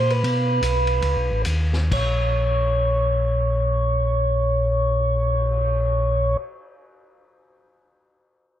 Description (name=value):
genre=soul jazz organ trio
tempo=125-166 BPM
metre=4/4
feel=swing 62% on 8ths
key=Bb minor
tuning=A4 = 441 Hz
part: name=percussive tonewheel organ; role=melody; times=0.0-6.4 s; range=Cb5 to Db5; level=-22 LUFS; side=equal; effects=slow rotary speaker, plate reverb
part: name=mellow tonewheel organ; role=bass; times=0.0-6.4 s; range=A1 to B2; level=-22 LUFS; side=equal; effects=slow rotary speaker
part: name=vintage drum kit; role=drums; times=0.1-5.6 s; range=crash cymbal, cymbal swell, hi-hat, kick drum, ride cymbal, snare drum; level=-31 LUFS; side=left 2 dB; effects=none
room=light reverb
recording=dark, warm production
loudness=-19 LUFS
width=side -11 dB against mid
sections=0.0-1.9 A section; 1.9-5.8 B section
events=slowing down 0.0-1.9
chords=0.2 B9; 1.9 Bbm